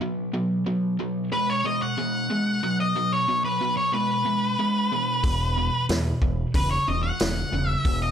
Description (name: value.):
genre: blues rock power trio and southern rock.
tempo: 92 BPM.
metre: 4/4.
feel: straight.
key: B major.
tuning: A4 = 437 Hz.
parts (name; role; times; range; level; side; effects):
overdriven electric guitar; riff; 0.0-8.1 s; E2 to G#3; -26 LUFS; equal; none.
octave-fuzz lead guitar; melody; 1.3-8.1 s; B4 to F#5; -25 LUFS; equal; distortion.
growling fingered electric bass; bass; 5.2-8.1 s; E1 to E2; -27 LUFS; equal; overdrive.
vintage drum kit; drums; 5.2-8.0 s; hi-hat, kick drum, snare drum; -25 LUFS; equal; none.
room: light reverb, studio ambience.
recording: none.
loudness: -22 LUFS.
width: side -9 dB against mid.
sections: 0.0-8.1 A section.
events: none.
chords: 0.0 B5; 5.2 E5.